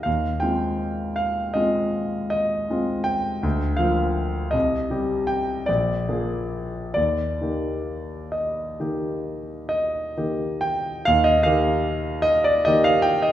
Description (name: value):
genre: classical, romantic nocturne for solo piano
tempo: 43-55 BPM (dotted quarters)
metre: 9/8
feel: rubato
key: Eb major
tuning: A4 = 440 Hz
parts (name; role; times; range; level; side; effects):
- warm concert grand piano; solo; 0.0-13.3 s; Bb1 to G5; -21 LUFS; equal; none
room: wet recital hall reverb, RT60 1.3 s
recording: heard from further back in the room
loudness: -21 LUFS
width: side -12 dB against mid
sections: 0.0-11.1 A section; 11.1-13.3 B section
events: none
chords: 0.1 Fm7/Eb; 3.4 Bb/D; 4.5 Cm; 5.7 Bb7; 7.0 Eb